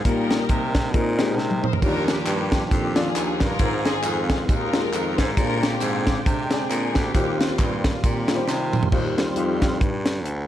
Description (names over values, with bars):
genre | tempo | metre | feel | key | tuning
uptempo gospel | 135 BPM | 4/4 | swing 57% on 8ths | Eb major | A4 = 440 Hz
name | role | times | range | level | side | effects
warm upright piano | accompaniment | 0.0-9.9 s | Ab2 to G5 | -28 LUFS | left 4 dB | none
tonewheel organ | sustained chords | 0.0-9.8 s | D3 to G5 | -30 LUFS | right 2 dB | slow rotary speaker, chorus vibrato
raspy baritone saxophone | bass | 0.0-10.5 s | D2 to C3 | -27 LUFS | equal | none
warm symphonic string section | melody | 0.1-8.9 s | Bb3 to C5 | -28 LUFS | left 1 dB | none
tight funk drum kit | drums | 0.1-10.4 s | crash cymbal, hi-hat, kick drum, snare drum, toms | -23 LUFS | equal | none
tambourine and handclaps | percussion | 1.8-8.8 s | none | -36 LUFS | equal | none
room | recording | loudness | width
light reverb | dark, warm production | -20 LUFS | side -12 dB against mid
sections
0.0-8.9 A section; 8.9-10.5 B section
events
drum fill 1.4-1.8, 8.5-8.9; tonewheel organ solo 8.9-10.5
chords
0.1 Eb/Bb; 0.9 Bb9sus4; 1.8 Ebmaj9; 3.6 Ab6; 5.4 Bb13; 7.2 Eb69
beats
| 0.06 0.50 0.94 1.38 | 1.83 2.27 2.71 3.16 | 3.60 4.04 4.49 4.93 | 5.38 5.82 6.26 6.71 | 7.15 7.59 8.04 8.48 | 8.92 9.37 9.81 10.25